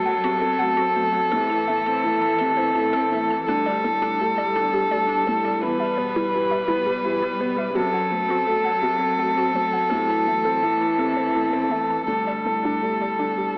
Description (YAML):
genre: neoclassical piano and strings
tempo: 84 BPM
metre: 3/4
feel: rubato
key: unclear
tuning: A4 = 441 Hz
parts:
  - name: warm violin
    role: melody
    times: 0.0-13.6 s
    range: A4 to B4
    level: -21 LUFS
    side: left 1 dB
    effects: analog delay
  - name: clear cello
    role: second line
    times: 0.0-13.6 s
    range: E3 to G3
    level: -32 LUFS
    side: right 1 dB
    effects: none
  - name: felt-muted upright piano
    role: accompaniment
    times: 0.0-13.6 s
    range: D2 to A4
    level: -27 LUFS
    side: equal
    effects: none
  - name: rich viola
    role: accompaniment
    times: 0.0-13.6 s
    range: C3 to D4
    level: -30 LUFS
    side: right 1 dB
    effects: none
  - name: hollow square pluck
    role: arpeggios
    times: 0.1-13.5 s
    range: D4 to A5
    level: -31 LUFS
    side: equal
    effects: chorus, analog delay
room: wet spring reverb, RT60 1.8 s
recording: worn, warbling old tape, cassette tape, warbly pitch drift, AM radio sound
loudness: -19 LUFS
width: side -26 dB against mid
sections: 0.0-13.6 A section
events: none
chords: 0.0 F#dim; 1.3 Am; 3.5 Dsus4; 5.6 Em; 7.7 F#dim; 9.9 Am; 12.1 Dsus4